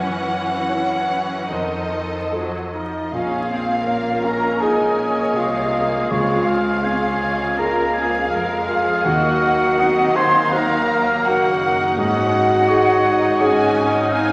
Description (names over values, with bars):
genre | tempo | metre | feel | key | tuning
cinematic | 81 BPM | 4/4 | uneven beats, rubato | Bb minor from 3.1 s | A4 = 443 Hz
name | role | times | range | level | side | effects
warm symphonic violin section | melody | 0.0-14.3 s | Db5 to Ab5 | -29 LUFS | equal | none
clear symphonic violin section | second line | 0.0-14.1 s | F#4 to C6 | -30 LUFS | equal | none
clear symphonic viola section | accompaniment | 0.0-14.3 s | C3 to Bb4 | -28 LUFS | equal | none
dark concert grand piano | accompaniment | 0.0-14.3 s | Bb1 to C#5 | -28 LUFS | equal | none
rich symphonic cello section | bass | 0.0-14.3 s | F2 to F3 | -34 LUFS | equal | none
mellow clarinet | second line | 2.7-14.1 s | Eb4 to C5 | -25 LUFS | equal | none
mellow hollow silver concert flute | second line | 2.7-14.1 s | Eb5 to C6 | -26 LUFS | equal | none
mellow French horn section | sustained chords | 3.1-14.3 s | Gb3 to Eb4 | -30 LUFS | equal | none
rich symphonic double bass section | bass | 3.1-14.3 s | Gb1 to F2 | -35 LUFS | equal | none
warm oboe | second line | 4.6-14.3 s | Db5 to Bb5 | -26 LUFS | equal | none
room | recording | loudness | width
wet scoring stage reverb, RT60 1.6 s | vinyl crackle | -19 LUFS | mono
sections
0.0-3.1 A section; 3.1-14.3 A section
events
none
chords
0.0 F#7sus4; 1.5 F7; 3.1 Bbm7; 6.1 Dbmaj7; 9.1 Ebmadd9; 12.0 Ab7sus4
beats
0.69 1.50 2.32 | 3.12 3.87 4.62 5.37 | 6.12 6.85 7.59 8.31 | 9.05 9.79 10.53 11.26 | 11.98 12.69 13.40 14.13